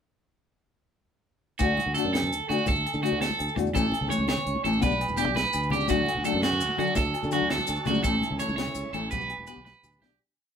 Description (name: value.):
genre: highlife guitar band.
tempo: 112 BPM (dotted quarters).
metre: 12/8.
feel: straight.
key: D major.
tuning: A4 = 439 Hz.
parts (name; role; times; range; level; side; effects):
nylon-string guitar; accompaniment; 1.6-10.1 s; E3 to A4; -29 LUFS; left 4 dB; none.
electric guitar at the edge of break-up; arpeggios; 1.6-10.2 s; F#4 to C#5; -28 LUFS; right 4 dB; none.
fingered electric bass; bass; 1.6-10.2 s; E1 to D3; -32 LUFS; equal; none.
tight funk drum kit; drums; 1.6-10.1 s; hi-hat, kick drum, snare drum, toms; -32 LUFS; equal; none.
agogo bells; percussion; 1.6-10.0 s; none; -39 LUFS; left 6 dB; none.
congas; percussion; 1.6-10.2 s; none; -35 LUFS; left 2 dB; none.
maracas; percussion; 1.6-10.1 s; none; -43 LUFS; left 9 dB; none.
bright tonewheel organ; sustained chords; 5.9-10.2 s; B3 to A4; -39 LUFS; right 1 dB; slow rotary speaker, chorus vibrato.
room: wet studio ambience, RT60 0.5 s.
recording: band playing live in one room.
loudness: -24 LUFS.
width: side -7 dB against mid.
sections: 1.6-10.2 groove.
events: fade-out 8.0-10.2; drum fill 9.7-10.2.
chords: 1.6 D; 3.7 A; 4.8 G; 5.9 D; 8.0 A; 9.1 G.